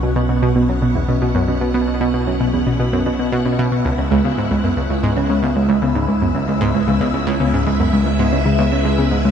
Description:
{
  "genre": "ambient, sequencer-driven space music",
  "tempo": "114 BPM",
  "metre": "4/4",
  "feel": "straight",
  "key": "unclear",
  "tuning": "A4 = 440 Hz",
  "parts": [
    { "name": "phased string machine", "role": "sustained chords", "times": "0.0-9.3 s", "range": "B2 to F#5", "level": "-24 LUFS", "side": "left 2 dB", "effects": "ensemble chorus, phaser, shimmer reverb" },
    { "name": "thumb-piano-like synth pluck", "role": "arpeggios", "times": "0.0-9.3 s", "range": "G#3 to F#4", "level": "-19 LUFS", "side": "moving between left 1 dB and right 5 dB", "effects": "chorus, auto-pan, analog delay, shimmer reverb" },
    { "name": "analog pluck", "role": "riff", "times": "0.0-9.3 s", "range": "C#2 to C#3", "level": "-19 LUFS", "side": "equal", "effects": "chorus, analog delay, shimmer reverb" },
    { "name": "warm sub bass", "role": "bass", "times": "0.0-9.3 s", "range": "B1 to C#2", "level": "-23 LUFS", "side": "left 2 dB", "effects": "none" },
    { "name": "wind-like tuned noise texture", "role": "texture", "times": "0.0-9.3 s", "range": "E4 to E5", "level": "-35 LUFS", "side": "left 2 dB", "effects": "none" }
  ],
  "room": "wet spring reverb, RT60 2.6 s",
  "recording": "echo-heavy mix",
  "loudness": "-15 LUFS",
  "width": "side -8 dB against mid",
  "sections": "0.0-9.3 A section",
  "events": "fade-in on string machine 0.0-9.3",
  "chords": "0.0 Bsus2; 3.9 C#m7"
}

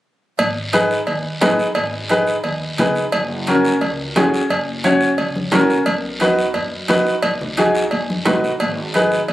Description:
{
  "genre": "latin, cumbia",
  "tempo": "175 BPM",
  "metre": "4/4",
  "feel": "straight",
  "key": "G# minor",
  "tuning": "A4 = 442 Hz",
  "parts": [
    { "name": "upright bass", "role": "bass", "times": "0.4-9.3 s", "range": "F#1 to F#2", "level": "-27 LUFS", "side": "equal", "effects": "none" },
    { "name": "cowbell and timbales", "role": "percussion", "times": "0.4-9.3 s", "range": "none", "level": "-22 LUFS", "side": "right 2 dB", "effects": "none" },
    { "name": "guiro", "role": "percussion", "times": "0.4-9.3 s", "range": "none", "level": "-30 LUFS", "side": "left 1 dB", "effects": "none" },
    { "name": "clear upright piano", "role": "accompaniment", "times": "0.7-9.2 s", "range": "C#4 to C#5", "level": "-17 LUFS", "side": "equal", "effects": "none" },
    { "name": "congas", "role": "percussion", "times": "0.7-9.1 s", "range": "none", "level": "-26 LUFS", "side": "left 2 dB", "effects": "none" }
  ],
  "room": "moderate plate reverb, RT60 2.6 s",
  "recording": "recorded on a phone in the room, club reverb",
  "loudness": "-16 LUFS",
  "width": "side -14 dB against mid",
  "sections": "0.4-9.3 A section",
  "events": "none",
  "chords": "0.4 G#m; 3.1 F#; 5.9 B; 8.6 G#m"
}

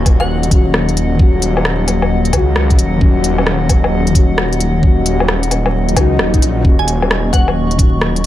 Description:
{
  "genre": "future garage",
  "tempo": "132 BPM",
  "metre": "4/4",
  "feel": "swing 64% on 16ths",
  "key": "unclear",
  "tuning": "A4 = 440 Hz",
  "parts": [
    { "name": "muted felt-like synth keys", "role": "accompaniment", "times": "0.0-8.3 s", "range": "Eb3 to Gb4", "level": "-20 LUFS", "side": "left 4 dB", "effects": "chorus, sidechain pumping, tape echo" },
    { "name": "warbly tape-like pad", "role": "sustained chords", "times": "0.0-8.3 s", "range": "Gb3 to Db6", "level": "-21 LUFS", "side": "left 1 dB", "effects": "chorus, built-in reverb, sidechain pumping" },
    { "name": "swelling detuned saw bass", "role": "bass", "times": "0.0-8.3 s", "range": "Eb1 to Db2", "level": "-16 LUFS", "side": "equal", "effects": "sidechain pumping" },
    { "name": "electronic kick drum", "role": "drums", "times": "0.1-7.9 s", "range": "none", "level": "-11 LUFS", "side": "equal", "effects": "none" },
    { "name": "organic electronic drum kit", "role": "drums", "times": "0.1-8.3 s", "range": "hi-hat, rim click, woodblock", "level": "-18 LUFS", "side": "left 1 dB", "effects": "none" },
    { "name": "glassy wavetable pluck", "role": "melody", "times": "0.2-0.5, 6.8-8.0 s", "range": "Gb5 to Ab5", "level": "-24 LUFS", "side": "equal", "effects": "chorus, tape echo" },
    { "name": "swell", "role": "sound effects", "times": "5.9-6.7 s", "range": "none", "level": "-25 LUFS", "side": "left 4 dB", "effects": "none" }
  ],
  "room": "digital ambience",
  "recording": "vinyl crackle",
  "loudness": "-11 LUFS",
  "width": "side -13 dB against mid",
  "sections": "0.0-8.3 A section",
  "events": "swell 5.9-6.7",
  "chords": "0.0 Ebm7"
}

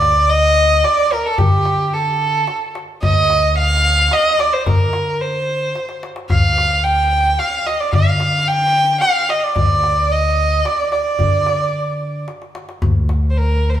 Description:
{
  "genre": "Arabic maqam ensemble",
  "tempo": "110 BPM",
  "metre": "3/4",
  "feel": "straight",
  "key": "D maqam kurd",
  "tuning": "A4 = 441 Hz",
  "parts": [
    { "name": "dark violin", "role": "melody", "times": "0.0-13.8 s", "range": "G4 to G5", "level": "-15 LUFS", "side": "right 1 dB", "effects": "none" },
    { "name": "upright bass", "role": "bass", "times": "0.0-13.8 s", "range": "D2 to D3", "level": "-20 LUFS", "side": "equal", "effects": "none" },
    { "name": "darbuka", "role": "percussion", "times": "0.0-13.2 s", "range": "none", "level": "-20 LUFS", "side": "left 2 dB", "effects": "none" },
    { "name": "rich cello", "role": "drone", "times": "12.8-13.8 s", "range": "D2", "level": "-31 LUFS", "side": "right 1 dB", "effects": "none" }
  ],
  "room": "wet large studio reverb, RT60 1.4 s",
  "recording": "band playing live in one room",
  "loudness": "-14 LUFS",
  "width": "side -11 dB against mid",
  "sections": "0.0-12.8 A section",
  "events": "drum fill 5.8-6.3, 12.3-12.8",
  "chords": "none"
}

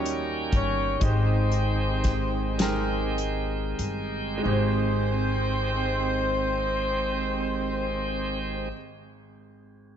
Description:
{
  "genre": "slow gospel",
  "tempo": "29-43 BPM (dotted quarters)",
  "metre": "6/8",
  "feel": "straight",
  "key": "Ab major",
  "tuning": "A4 = 440 Hz",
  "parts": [
    { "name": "mellow horn section", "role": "melody", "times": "0.0-8.7 s", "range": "C4 to Db5", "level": "-29 LUFS", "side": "equal", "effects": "none" },
    { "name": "bright grand piano", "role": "accompaniment", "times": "0.0-10.0 s", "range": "Ab1 to C5", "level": "-32 LUFS", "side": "equal", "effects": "none" },
    { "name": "bright tonewheel organ", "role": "sustained chords", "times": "0.0-8.7 s", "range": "Eb3 to G4", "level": "-32 LUFS", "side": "right 4 dB", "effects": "slow rotary speaker, overdrive" },
    { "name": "upright bass", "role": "bass", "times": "0.0-8.7 s", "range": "G1 to Eb2", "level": "-29 LUFS", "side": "left 1 dB", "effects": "none" },
    { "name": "warm soul drum kit", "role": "drums", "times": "0.1-4.1 s", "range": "hi-hat, kick drum, snare drum", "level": "-28 LUFS", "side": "left 1 dB", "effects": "none" }
  ],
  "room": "moderate concert hall reverb, RT60 2.1 s",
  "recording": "nothing above 7.9 kHz",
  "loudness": "-24 LUFS",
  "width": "side -9 dB against mid",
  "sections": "0.0-4.5 A section; 4.5-8.6 B section",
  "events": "slowing down 0.0-4.5",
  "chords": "0.0 Eb7; 1.0 Abmaj7"
}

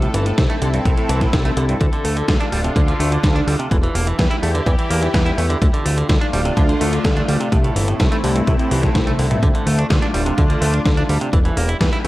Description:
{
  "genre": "italo disco",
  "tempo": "126 BPM",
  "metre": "4/4",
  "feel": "straight",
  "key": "D minor",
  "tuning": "A4 = 440 Hz",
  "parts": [
    { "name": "lush unison pad", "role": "sustained chords", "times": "0.0-12.1 s", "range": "A3 to A4", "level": "-23 LUFS", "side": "left 1 dB", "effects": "chorus, phaser" },
    { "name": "direct-recorded clean electric guitar", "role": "arpeggios", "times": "0.0-12.1 s", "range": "G2 to E4", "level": "-24 LUFS", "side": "right 2 dB", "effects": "vintage 12-bit sampler grit, analog delay" },
    { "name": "fat analog bass", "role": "bass", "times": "0.0-12.1 s", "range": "D1 to E2", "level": "-20 LUFS", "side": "equal", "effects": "none" },
    { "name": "gated 80s digital drum machine", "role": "drums", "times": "0.0-12.1 s", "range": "hi-hat, snare drum, toms", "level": "-24 LUFS", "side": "equal", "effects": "gated reverb, gated reverb snare" },
    { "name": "electronic kick drum", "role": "drums", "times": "0.4-11.9 s", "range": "none", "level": "-18 LUFS", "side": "equal", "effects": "none" }
  ],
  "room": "little or no reverb",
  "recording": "dry, gritty hardware recording",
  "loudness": "-15 LUFS",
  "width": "side -17 dB against mid",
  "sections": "0.0-12.1 A section",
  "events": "drum fill 8.7-9.4",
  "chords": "0.0 Am; 1.8 Dm; 3.7 Em; 5.6 Dm; 7.5 Am; 9.4 Dm; 11.3 Edim"
}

